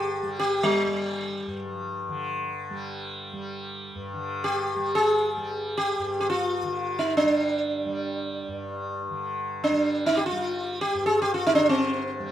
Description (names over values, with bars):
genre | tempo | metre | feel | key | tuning
indian classical, Hindustani | free time | none | none | G raga bhairavi | A4 = 441 Hz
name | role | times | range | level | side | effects
sitar | melody | 0.0-12.3 s | G3 to Ab4 | -24 LUFS | equal | none
tanpura | drone | 0.0-12.3 s | G2 to G3 | -32 LUFS | left 1 dB | none
room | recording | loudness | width
light reverb | minimal, uncompressed stereo recording | -24 LUFS | side -11 dB against mid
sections
0.0-4.1 A section; 4.1-12.3 A section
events
none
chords
none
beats
free time